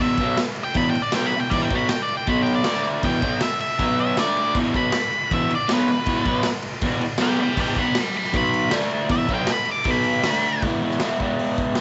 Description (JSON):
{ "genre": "garage rock duo or trio", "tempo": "158 BPM", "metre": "4/4", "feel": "straight", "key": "unclear", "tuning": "A4 = 440 Hz", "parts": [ { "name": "octave-fuzz lead guitar", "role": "melody", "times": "0.0-10.6 s", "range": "B4 to D6", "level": "-26 LUFS", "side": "equal", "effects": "distortion" }, { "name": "crunchy overdriven guitar", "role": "riff", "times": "0.0-11.8 s", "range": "E2 to E4", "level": "-25 LUFS", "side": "equal", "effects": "spring reverb" }, { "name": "raw garage drum kit", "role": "drums", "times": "0.2-11.8 s", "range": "crash cymbal, hi-hat, kick drum, snare drum", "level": "-28 LUFS", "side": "equal", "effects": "none" } ], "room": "small room reverb", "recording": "nothing above 7.9 kHz", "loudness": "-22 LUFS", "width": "mono", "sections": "0.0-10.6 A section; 10.6-11.8 B section", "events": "lead electric guitar solo 0.0-10.6", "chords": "0.0 E5; 2.3 B5; 2.7 D5; 3.0 E5; 3.8 B5; 4.2 D5; 4.6 E5; 8.4 B5; 8.7 D5; 9.1 E5; 9.9 B5; 10.3 D5; 10.6 E" }